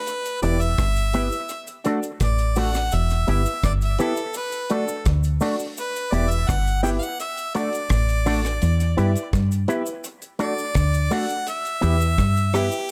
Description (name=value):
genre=roots reggae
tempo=84 BPM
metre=4/4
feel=straight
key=unclear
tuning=A4 = 440 Hz
part: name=clear harmonica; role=melody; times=0.0-12.9 s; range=G4 to G5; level=-29 LUFS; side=equal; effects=dub echo, plate reverb
part: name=deep reggae drum kit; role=drums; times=0.1-12.9 s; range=hi-hat, kick drum, rim click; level=-30 LUFS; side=equal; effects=dub echo
part: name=cabasa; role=percussion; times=0.1-12.9 s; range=none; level=-41 LUFS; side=equal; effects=none
part: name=electric guitar with an envelope filter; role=accompaniment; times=0.4-12.7 s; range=A3 to G4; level=-29 LUFS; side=equal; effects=analog chorus, dub echo, plate reverb
part: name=warm upright piano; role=stabs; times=0.4-12.8 s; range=D4 to E5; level=-32 LUFS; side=equal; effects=plate reverb
part: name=deep dub fingered electric bass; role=bass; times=0.4-12.7 s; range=E1 to G2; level=-23 LUFS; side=equal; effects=none
room=light reverb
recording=none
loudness=-22 LUFS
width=mono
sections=0.0-12.9 A section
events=harmonica solo 0.0-12.9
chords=0.1 Em; 1.5 D; 2.9 Em; 4.3 D; 5.8 Em; 7.2 D; 8.6 Em; 10.1 D; 11.5 Em